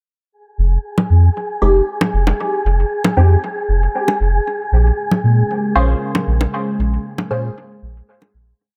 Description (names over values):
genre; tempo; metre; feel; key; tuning
dub techno; 116 BPM; 4/4; straight; F minor; A4 = 440 Hz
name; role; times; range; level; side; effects
wind-like tuned noise texture; texture; 0.7-8.6 s; Ab4; -26 LUFS; equal; built-in reverb
soft dub sub bass; bass; 0.6-8.5 s; F1 to Bb2; -15 LUFS; equal; none
congas and bongos; percussion; 1.0-8.3 s; none; -22 LUFS; equal; dub echo
filtered dub chord stab; stabs; 1.6-7.5 s; Ab3 to C5; -22 LUFS; equal; phaser, dub echo
deep dark ambient pad; sustained chords; 5.3-8.6 s; Ab3 to Bb4; -27 LUFS; equal; chorus, built-in reverb
room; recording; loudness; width
light reverb; none; -16 LUFS; mono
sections
0.3-8.6 groove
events
filter sweep on synth stab 0.3-8.6; fade-out 5.8-8.6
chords
0.3 Fm; 4.5 Bbm7